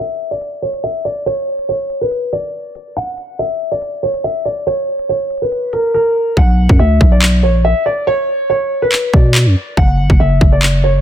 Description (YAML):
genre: hip hop, drill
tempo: 141 BPM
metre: 4/4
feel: half-time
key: B harmonic minor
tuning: A4 = 435 Hz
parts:
  - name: dark grand piano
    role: melody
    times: 0.0-11.0 s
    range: A#4 to F#5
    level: -16 LUFS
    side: equal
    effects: low-pass filter
  - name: drill drum kit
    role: drums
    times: 0.4-10.7 s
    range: handclaps, hi-hat, kick drum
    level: -12 LUFS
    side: equal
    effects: none
  - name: growling 808-style bass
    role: bass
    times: 6.4-11.0 s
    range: F#1 to B2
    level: -12 LUFS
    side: equal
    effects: none
room: digital ambience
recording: dense, heavily limited modern master, low-pass filter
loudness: -12 LUFS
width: side -10 dB against mid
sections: 0.0-6.4 A section; 6.4-11.0 B section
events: filter sweep 0.0-6.4; silent gap 5.9-6.4; hi-hats muted 6.4-11.0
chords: 0.0 N.C.; 6.4 Bm; 9.8 N.C.